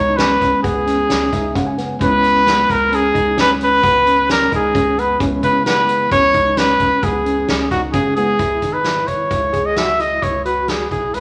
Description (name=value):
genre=progressive instrumental, band music in an uneven meter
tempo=132 BPM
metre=7/4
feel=straight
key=unclear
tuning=A4 = 439 Hz
part: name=breathy trumpet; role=melody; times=0.0-11.2 s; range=F#4 to E5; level=-17 LUFS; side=equal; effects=none
part: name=tine electric piano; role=accompaniment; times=0.0-8.4 s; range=G#3 to G#5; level=-28 LUFS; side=equal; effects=phaser
part: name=overdriven tine electric piano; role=arpeggios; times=0.0-11.2 s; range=B3 to G#4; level=-25 LUFS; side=equal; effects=fast tremolo
part: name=rubbery square bass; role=bass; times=0.0-11.2 s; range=G#1 to C#3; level=-31 LUFS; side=equal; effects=none
part: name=soft-mallet drum kit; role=drums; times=0.2-11.2 s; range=hi-hat, kick drum, snare drum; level=-26 LUFS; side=equal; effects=none
room=wet large studio reverb, RT60 1.2 s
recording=none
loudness=-16 LUFS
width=mono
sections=0.0-8.4 A section; 8.4-11.2 B section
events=tine electric piano fill 1.1-2.0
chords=0.0 E/C#; 8.4 C#m7